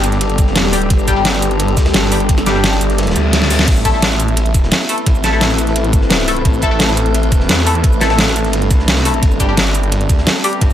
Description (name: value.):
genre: dark technical drum and bass.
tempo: 173 BPM.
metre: 4/4.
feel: straight.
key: A minor.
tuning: A4 = 440 Hz.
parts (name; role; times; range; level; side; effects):
metallic inharmonic drone; sustained chords; 0.0-10.7 s; G3 to B4; -22 LUFS; right 1 dB; chorus, built-in reverb, sidechain pumping.
band-passed chord stab; stabs; 0.0-10.5 s; G3 to A4; -21 LUFS; left 2 dB; phaser, wide subtle chorus, dub echo.
snarling distorted saw bass; bass; 0.0-10.7 s; E1 to E2; -17 LUFS; equal; distortion, sidechain pumping.
crunchy breakbeat drum kit; drums; 0.0-10.7 s; ride cymbal, snare drum; -28 LUFS; equal; none.
dubstep drum kit; drums; 0.0-10.7 s; cabasa, crash cymbal, hi-hat, snare drum; -16 LUFS; equal; none.
deep dark ambient pad; texture; 0.0-10.7 s; B3 to E5; -23 LUFS; left 2 dB; chorus, built-in reverb, sidechain pumping.
electronic kick drum; drums; 0.4-10.7 s; none; -13 LUFS; equal; none.
reverse cymbal; sound effects; 3.1-3.7 s; none; -23 LUFS; left 4 dB; none.
room: light reverb.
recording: none.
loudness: -11 LUFS.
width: side -11 dB against mid.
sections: 0.0-10.7 A section.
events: kick drops out 3.0-3.7; reverse cymbal 3.1-3.7; drum fill 3.3-3.7.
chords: 0.0 G; 3.7 Am; 9.2 G.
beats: 0.21 0.56 | 0.90 1.25 1.60 1.94 | 2.29 2.64 2.98 3.33 | 3.68 4.02 4.37 4.72 | 5.07 5.41 5.76 6.11 | 6.45 6.80 7.15 7.49 | 7.84 8.19 8.53 8.88 | 9.23 9.57 9.92 10.27 | 10.61.